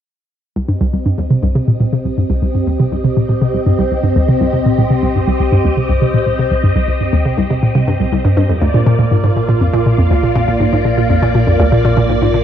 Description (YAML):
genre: ambient, sequencer-driven space music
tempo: 121 BPM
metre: 4/4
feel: straight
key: C minor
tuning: A4 = 437 Hz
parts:
  - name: phased string machine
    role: sustained chords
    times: 0.6-12.4 s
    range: Bb3 to Eb5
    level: -17 LUFS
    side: equal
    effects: ensemble chorus, phaser
  - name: hollow square pluck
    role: riff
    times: 0.6-12.4 s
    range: C2 to C3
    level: -13 LUFS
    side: equal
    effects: chorus, tape echo
  - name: warm sub bass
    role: bass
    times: 0.6-12.4 s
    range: Bb1 to C2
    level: -26 LUFS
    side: equal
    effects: none
room: light reverb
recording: cassette tape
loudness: -12 LUFS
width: side -10 dB against mid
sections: 0.6-12.4 A section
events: fade-in on sub bass 0.6-12.4; filter sweep on synth arpeggio sound 0.6-12.4; filter sweep on string machine 0.6-12.4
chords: 0.6 Cm; 8.5 Bb